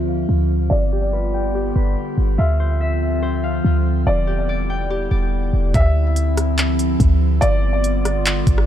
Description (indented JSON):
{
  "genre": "hip hop, atmospheric cloud-rap",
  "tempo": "143 BPM",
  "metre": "4/4",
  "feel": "half-time",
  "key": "D dorian",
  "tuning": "A4 = 439 Hz",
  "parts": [
    { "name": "felt-muted upright piano", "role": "melody", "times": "0.0-8.6 s", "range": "D5 to E5", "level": "-26 LUFS", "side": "equal", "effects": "low-pass filter, ping-pong delay" },
    { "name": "warbly tape-like pad", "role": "sustained chords", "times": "0.0-8.7 s", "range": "D3 to F4", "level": "-23 LUFS", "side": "equal", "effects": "chorus, built-in reverb, sidechain pumping, low-pass filter" },
    { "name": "Celtic harp", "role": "arpeggios", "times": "0.0-7.3 s", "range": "F4 to G5", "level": "-29 LUFS", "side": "left 5 dB", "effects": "low-pass filter, ping-pong delay" },
    { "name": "clean 808-style bass", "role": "bass", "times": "0.0-8.7 s", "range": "E1 to D2", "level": "-18 LUFS", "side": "equal", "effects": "none" },
    { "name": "smooth R&B drum kit", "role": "drums", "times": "5.7-8.7 s", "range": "handclaps, hi-hat, kick drum, rim click", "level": "-19 LUFS", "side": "equal", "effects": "none" }
  ],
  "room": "digital ambience",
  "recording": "none",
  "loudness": "-16 LUFS",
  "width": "side -10 dB against mid",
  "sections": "0.0-5.7 A section; 5.7-8.7 B section",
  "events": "filter sweep 0.0-5.7",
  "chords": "0.0 Dm9; 0.7 G7; 2.4 Dm9; 4.1 Em7; 5.7 Dm9; 7.4 G7",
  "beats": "0.29 | 0.71 1.13 1.55 1.97 | 2.39 2.81 3.23 3.65 | 4.07 4.49 4.91 5.32 | 5.74 6.16 6.58 7.00 | 7.42 7.84 8.26"
}